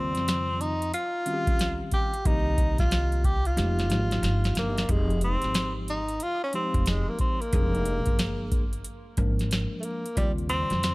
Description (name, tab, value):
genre	hip hop, jazz-hop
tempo	91 BPM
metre	4/4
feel	swing 64% on 16ths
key	F minor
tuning	A4 = 440 Hz
part	warm tenor saxophone	melody	0.0-10.9 s	G3 to G4	-29 LUFS	equal	tape echo
part	mellow tine electric piano	accompaniment	0.0-10.9 s	Db3 to Bb4	-34 LUFS	equal	medium stereo tremolo
part	upright bass	bass	0.0-10.9 s	F1 to F2	-28 LUFS	equal	none
part	booming analog drum machine	drums	0.1-10.9 s	hi-hat, kick drum, snare drum	-27 LUFS	equal	none
room	little or no reverb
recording	vinyl crackle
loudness	-24 LUFS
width	side -23 dB against mid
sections	0.0-4.9 A section; 4.9-10.9 A section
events	drum fill 3.6-4.9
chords	0.0 Eb13; 2.3 Cm7; 3.6 Fm11; 4.9 Fm9; 7.5 Bb7/F; 10.2 Eb13